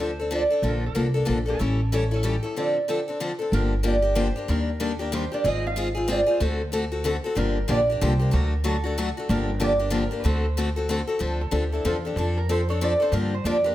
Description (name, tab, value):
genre	acoustic string swing (jazz manouche)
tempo	187 BPM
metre	3/4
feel	swing 61% on 8ths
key	D minor, G minor from 3.5 s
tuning	A4 = 440 Hz
part	lap resonator guitar	melody	0.0-13.7 s	E4 to F5	-27 LUFS	right 2 dB	slapback echo
part	picked steel-string acoustic guitar	accompaniment	0.0-13.7 s	D3 to A4	-26 LUFS	left 3 dB	none
part	upright bass	bass	0.0-13.7 s	G1 to G2	-25 LUFS	equal	none
room	light reverb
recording	close, detailed microphones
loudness	-22 LUFS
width	side -14 dB against mid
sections	0.0-3.5 A section; 3.5-11.2 B section; 11.2-13.7 C section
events	break 2.6-3.5; resonator guitar played with a steel bar solo 11.2-13.7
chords	0.0 Dm7; 0.6 Bbmaj7; 1.6 A7; 2.6 Dm7; 3.5 Gm7; 4.5 Ebmaj7; 5.4 Ab6; 6.4 D7; 7.4 Gm7; 8.3 D; 9.3 Gm7; 10.2 D7; 11.2 Dm9; 12.2 F6; 13.1 Gm7